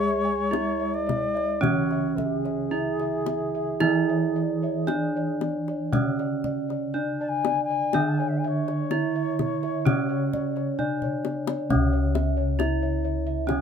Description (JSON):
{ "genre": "Javanese gamelan", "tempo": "55-67 BPM", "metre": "4/4", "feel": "straight", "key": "unclear", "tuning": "A4 = 441 Hz", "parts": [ { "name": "gamelan-type bronze metallophone", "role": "melody", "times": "0.0-13.6 s", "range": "C#4 to G#4-30c", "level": "-28 LUFS", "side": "right 6 dB", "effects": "none" }, { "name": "reedy bansuri", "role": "second line", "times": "0.0-11.3 s", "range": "G#4-24c to A5", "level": "-30 LUFS", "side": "left 4 dB", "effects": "none" }, { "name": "gamelan-type bronze metallophone", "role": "accompaniment", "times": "0.0-13.6 s", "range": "C#3 to G#3-30c", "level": "-30 LUFS", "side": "equal", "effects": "none" }, { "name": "gamelan-type bossed gongs", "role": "arpeggios", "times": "0.0-13.6 s", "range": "C#5 to G#5-30c", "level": "-34 LUFS", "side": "left 9 dB", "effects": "none" }, { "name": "gamelan-type bronze metallophone", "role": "arpeggios", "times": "0.0-13.6 s", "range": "C#5 to G#5-30c", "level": "-36 LUFS", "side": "right 7 dB", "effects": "none" }, { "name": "gamelan-type bossed gongs", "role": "bass", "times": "0.0-13.6 s", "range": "C#2 to G#4-30c", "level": "-31 LUFS", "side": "left 2 dB", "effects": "none" }, { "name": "kendang", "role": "percussion", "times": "0.5-13.6 s", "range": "none", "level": "-29 LUFS", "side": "left 6 dB", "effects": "none" } ], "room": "light reverb", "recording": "minimal, uncompressed stereo recording", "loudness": "-23 LUFS", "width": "side -7 dB against mid", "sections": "0.0-11.7 A section; 11.7-13.6 B section", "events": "drum fill 10.8-11.7", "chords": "none" }